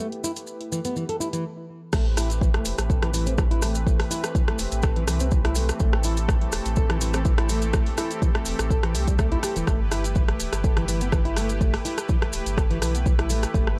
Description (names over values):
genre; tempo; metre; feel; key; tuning
afro house; 124 BPM; 4/4; swing 53% on 16ths; A minor; A4 = 442 Hz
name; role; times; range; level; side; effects
warm analog pad; sustained chords; 0.0-13.8 s; E3 to B4; -35 LUFS; equal; chorus, tremolo, sidechain pumping
nylon-string guitar; arpeggios; 0.0-13.7 s; E3 to A4; -33 LUFS; equal; sidechain pumping, analog delay
deep house drum kit; drums; 0.1-13.8 s; crash cymbal, hi-hat, rim click; -33 LUFS; equal; none
maracas; percussion; 0.2-13.6 s; none; -37 LUFS; equal; none
warm sub bass; bass; 1.9-13.8 s; D1 to C2; -29 LUFS; equal; tube saturation, sidechain pumping
electronic kick drum; drums; 1.9-13.6 s; none; -25 LUFS; equal; none
room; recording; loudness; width
little or no reverb; dry, gritty hardware recording; -24 LUFS; mono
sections
0.0-1.9 A section; 1.9-13.8 B section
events
filter sweep on nylon-string guitar 0.0-1.9; stop 1.4-1.9; drop 1.9-13.8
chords
0.0 G69; 1.9 Am9; 9.7 G69